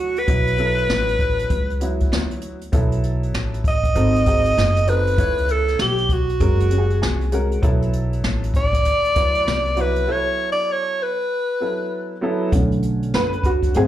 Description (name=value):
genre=hip hop, jazz-hop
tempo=98 BPM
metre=4/4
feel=swing 63% on 16ths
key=B dorian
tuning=A4 = 438 Hz
part: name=clear alto saxophone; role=melody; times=0.0-12.2 s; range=F#4 to D#5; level=-20 LUFS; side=equal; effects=plate reverb, slapback echo
part: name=dark upright piano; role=accompaniment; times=0.0-13.9 s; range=D3 to G#5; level=-25 LUFS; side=right 1 dB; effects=plate reverb, slapback echo
part: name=upright bass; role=bass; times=0.0-13.9 s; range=F#1 to D2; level=-21 LUFS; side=equal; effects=none
part: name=jazz brush drum kit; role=drums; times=0.2-13.9 s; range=hi-hat, kick drum, snare drum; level=-22 LUFS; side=equal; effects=none
room=little or no reverb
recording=live gig heard through the venue's PA, club reverb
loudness=-17 LUFS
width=side -12 dB against mid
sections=0.0-2.7 A section; 2.7-12.5 B section; 12.5-13.9 C section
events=upright piano fill 6.7-7.6; break 10.1-12.5; upright piano solo 12.5-13.9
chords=0.0 Bm7; 2.7 B5; 4.0 G#7b9; 5.2 A13; 6.4 F#; 7.6 Bm7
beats=| 0.28 0.90 1.51 2.12 | 2.73 3.35 3.96 4.57 | 5.18 5.79 6.41 7.02 | 7.63 8.24 8.86 9.47 | 10.08 10.69 11.30 11.92 | 12.53 13.14 13.75